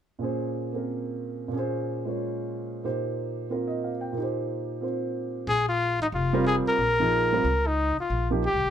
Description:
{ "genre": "modal jazz", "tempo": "182 BPM", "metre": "4/4", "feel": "swing 62% on 8ths", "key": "Bb dorian", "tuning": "A4 = 441 Hz", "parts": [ { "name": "warm concert grand piano", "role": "accompaniment", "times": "0.2-8.4 s", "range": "Bb2 to G5", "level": "-28 LUFS", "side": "right 2 dB", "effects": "none" }, { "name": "clear trumpet", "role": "melody", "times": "5.5-8.7 s", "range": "Eb4 to Bb4", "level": "-24 LUFS", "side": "left 2 dB", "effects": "none" }, { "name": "upright bass", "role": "bass", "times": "5.5-8.7 s", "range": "F1 to Db2", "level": "-28 LUFS", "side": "equal", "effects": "none" } ], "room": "moderate small room ambience, RT60 0.5 s", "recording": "none", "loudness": "-25 LUFS", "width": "side -9 dB against mid", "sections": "0.2-5.5 A section; 5.5-8.7 B section", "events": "none", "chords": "0.2 Bbm7; 2.8 Cm7/Bb; 5.5 Bbm7; 8.1 Cm7" }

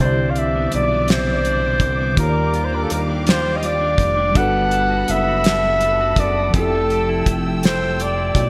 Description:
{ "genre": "slow six-eight R&B", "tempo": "55 BPM (dotted quarters)", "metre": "6/8", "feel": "straight", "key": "C major", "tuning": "A4 = 440 Hz", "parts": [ { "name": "warm flugelhorn", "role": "melody", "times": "0.0-8.5 s", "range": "A4 to F#5", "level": "-22 LUFS", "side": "equal", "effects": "digital delay" }, { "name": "clean electric guitar", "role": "second line", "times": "0.0-8.5 s", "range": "C3 to A4", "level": "-30 LUFS", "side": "equal", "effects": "digital delay" }, { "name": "mellow tine electric piano", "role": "accompaniment", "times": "0.0-8.5 s", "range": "D3 to D5", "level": "-27 LUFS", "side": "equal", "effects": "none" }, { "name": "muted studio string section", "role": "sustained chords", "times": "0.0-8.5 s", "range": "G4 to E6", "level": "-32 LUFS", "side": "equal", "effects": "none" }, { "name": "fat analog bass", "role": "bass", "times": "0.0-8.5 s", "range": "F1 to Eb2", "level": "-25 LUFS", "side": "equal", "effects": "none" }, { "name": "damped 70s drum kit", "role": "drums", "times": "0.4-8.5 s", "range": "hi-hat, kick drum, snare drum", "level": "-22 LUFS", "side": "equal", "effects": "none" } ], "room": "moderate lush hall reverb, RT60 2.8 s", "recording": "bright 1980s-style digital production", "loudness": "-18 LUFS", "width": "mono", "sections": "0.0-8.5 A section", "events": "none", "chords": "0.0 Cmaj9; 2.2 Ebmaj9; 4.4 Gmaj9; 6.5 Fmaj9" }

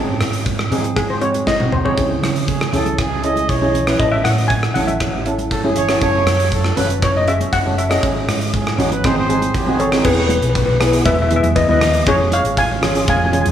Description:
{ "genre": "calypso", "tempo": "119 BPM", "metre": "4/4", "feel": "straight", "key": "C# minor", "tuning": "A4 = 440 Hz", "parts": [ { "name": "steel pan", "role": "melody", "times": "0.0-13.5 s", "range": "G#4 to G#5", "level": "-18 LUFS", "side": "left 2 dB", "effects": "digital delay" }, { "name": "steel pan", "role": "accompaniment", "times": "0.0-13.5 s", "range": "B3 to B4", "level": "-21 LUFS", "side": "equal", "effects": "none" }, { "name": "fingered electric bass", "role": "bass", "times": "0.0-13.5 s", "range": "E1 to C#3", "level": "-21 LUFS", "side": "right 1 dB", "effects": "none" }, { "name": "gated 80s drum kit", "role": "drums", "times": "0.2-13.5 s", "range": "crash cymbal, hi-hat, kick drum, rim click, snare drum, toms", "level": "-20 LUFS", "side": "right 1 dB", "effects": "none" }, { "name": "congas", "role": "percussion", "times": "0.2-13.5 s", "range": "none", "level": "-27 LUFS", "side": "right 2 dB", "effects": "none" }, { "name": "breathy trumpet", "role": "second line", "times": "2.5-10.0 s", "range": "G#4 to D#5", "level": "-22 LUFS", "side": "right 4 dB", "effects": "digital delay" } ], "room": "moderate scoring stage reverb, RT60 2.0 s", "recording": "none", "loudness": "-14 LUFS", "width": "side -10 dB against mid", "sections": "0.0-10.1 A section; 10.1-13.5 B section", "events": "steel pan solo 0.0-10.1; drum fill 1.5-2.0", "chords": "0.0 G#; 2.0 C#m; 4.0 A; 6.0 F#m; 8.0 G#sus4; 9.0 G#; 10.1 E; 12.1 C#/E#" }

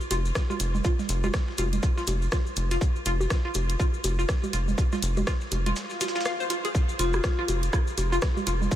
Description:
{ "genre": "minimal techno", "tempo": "122 BPM", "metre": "4/4", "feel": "swing 60% on 16ths", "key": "unclear", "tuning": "A4 = 441 Hz", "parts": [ { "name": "maracas", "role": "percussion", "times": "0.0-8.8 s", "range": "none", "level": "-39 LUFS", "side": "left 4 dB", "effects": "none" }, { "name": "hollow square pluck", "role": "riff", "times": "0.1-8.5 s", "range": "F4 to F5", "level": "-32 LUFS", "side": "left 1 dB", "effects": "lush chorus, sidechain pumping, tape echo" }, { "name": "rubbery square bass", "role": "bass", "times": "0.1-8.7 s", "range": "F1", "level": "-26 LUFS", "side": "equal", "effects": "tube saturation, sidechain pumping" }, { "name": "dusty soul sampler-style drum kit", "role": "drums", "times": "0.1-8.8 s", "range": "hi-hat, shaker, snare drum", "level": "-42 LUFS", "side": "right 2 dB", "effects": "sidechain pumping on perc, high-pass filter on perc, high-pass filter on snare, sidechain pumping on hats, high-pass filter on hats" }, { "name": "garage drum kit", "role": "drums", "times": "0.1-8.6 s", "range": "hi-hat, rim click", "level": "-34 LUFS", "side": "equal", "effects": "none" }, { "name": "electronic bongos, congas and rim click", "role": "percussion", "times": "0.1-8.7 s", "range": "none", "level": "-34 LUFS", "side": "right 3 dB", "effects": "analog delay" }, { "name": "electronic kick drum", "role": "drums", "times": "0.4-8.8 s", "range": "none", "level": "-25 LUFS", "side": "equal", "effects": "none" }, { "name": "swell", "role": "sound effects", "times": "5.9-6.7 s", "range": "none", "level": "-36 LUFS", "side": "left 1 dB", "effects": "none" }, { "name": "vibraphone with hard mallets", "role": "melody", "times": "7.0-7.5 s", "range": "F4", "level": "-34 LUFS", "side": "left 3 dB", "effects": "analog delay" } ], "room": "light reverb", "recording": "none", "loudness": "-24 LUFS", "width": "side -12 dB against mid", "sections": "0.0-8.8 A section", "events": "swell 5.9-6.7", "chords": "none" }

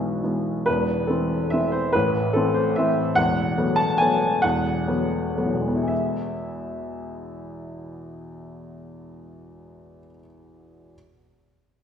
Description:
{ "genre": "classical, piano waltz", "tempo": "106-157 BPM", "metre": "3/4", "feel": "rubato", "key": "E major", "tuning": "A4 = 437 Hz", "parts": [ { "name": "warm upright piano", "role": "solo", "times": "0.0-11.0 s", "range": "E1 to A5", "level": "-22 LUFS", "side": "left 1 dB", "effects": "none" } ], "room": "wet recital hall reverb, RT60 1.7 s", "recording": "recorded in a church or concert hall", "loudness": "-20 LUFS", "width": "side -8 dB against mid", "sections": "0.7-5.9 A section; 5.9-8.8 B section", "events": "slowing down 2.6-5.9", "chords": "0.0 E; 0.7 Am/E; 3.2 B5/E; 5.9 E" }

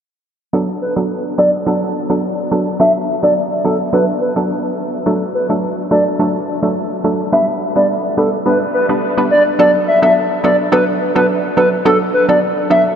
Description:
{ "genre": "dancehall", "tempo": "106 BPM", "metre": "4/4", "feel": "straight", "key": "B minor", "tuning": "A4 = 442 Hz", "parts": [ { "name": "hollow square pluck", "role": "accompaniment", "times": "0.5-12.9 s", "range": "F#3 to B4", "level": "-16 LUFS", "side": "right 1 dB", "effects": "chorus" }, { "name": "hollow clarinet-like synth lead", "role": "melody", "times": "0.8-12.8 s", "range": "A4 to E5", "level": "-15 LUFS", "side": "left 1 dB", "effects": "chorus, tape echo" } ], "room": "wet huge ambient reverb, RT60 8.2 s", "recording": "dreamy mix soaked in reverb, low-pass filter", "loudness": "-13 LUFS", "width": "side -8 dB against mid", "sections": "0.5-9.6 A section; 9.6-13.0 B section", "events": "filter sweep 0.5-9.6", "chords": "0.5 Bm7; 5.1 D; 7.3 G; 9.6 Bm7" }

